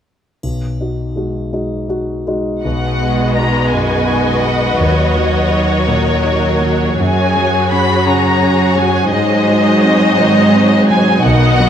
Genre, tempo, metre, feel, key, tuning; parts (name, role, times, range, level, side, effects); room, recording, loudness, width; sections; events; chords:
cinematic, emotional film score for orchestra; 56 BPM (dotted quarters); 6/8; rubato; A4 = 440 Hz
warm concert grand piano; accompaniment; 0.4-11.7 s; B1 to F#4; -17 LUFS; equal
triangle; percussion; 0.4-1.9 s; -42 LUFS; left 1 dB
rich symphonic violin section; melody; 2.6-11.7 s; Db5 to Cb6; -18 LUFS; left 3 dB
warm symphonic violin section; second line; 2.6-11.7 s; F#4 to D#5; -18 LUFS; left 2 dB
clear symphonic viola section; accompaniment; 2.6-11.7 s; D#3 to F#4; -18 LUFS; right 1 dB
rich symphonic cello section; bass; 2.6-11.7 s; Eb2 to B2; -16 LUFS; right 2 dB
moderate scoring stage reverb, RT60 1.4 s; close, detailed microphones; -11 LUFS; side -9 dB against mid
0.4-2.6 A section; 2.6-11.7 B section
0.4 B6; 4.8 Ebm7; 7.0 Gbsus2; 9.1 Ab7